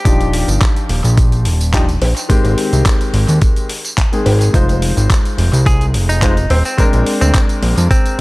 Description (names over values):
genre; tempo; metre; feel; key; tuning
nu-disco, nu disco; 107 BPM; 4/4; straight; F dorian; A4 = 440 Hz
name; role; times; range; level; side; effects
direct-recorded clean electric guitar; melody; 0.0-0.5, 5.7-8.2 s; C4 to Ab4; -22 LUFS; equal; analog delay
clear grand piano; accompaniment; 0.0-8.2 s; Eb3 to C5; -20 LUFS; left 2 dB; analog delay
fat analog bass; bass; 0.1-7.9 s; Eb1 to F2; -13 LUFS; equal; none
dusty soul sampler-style drum kit; drums; 0.1-8.2 s; handclaps, hi-hat, tambourine; -22 LUFS; equal; analog delay
electronic kick drum; drums; 0.1-8.0 s; none; -13 LUFS; equal; none
cowbell; percussion; 2.0-6.6 s; none; -26 LUFS; left 1 dB; none
room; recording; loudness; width
little or no reverb; echo-heavy mix; -11 LUFS; side -21 dB against mid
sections
0.0-8.2 A section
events
none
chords
0.0 Ebmaj9; 2.3 Abmaj7; 4.5 Fm7; 6.8 Bb9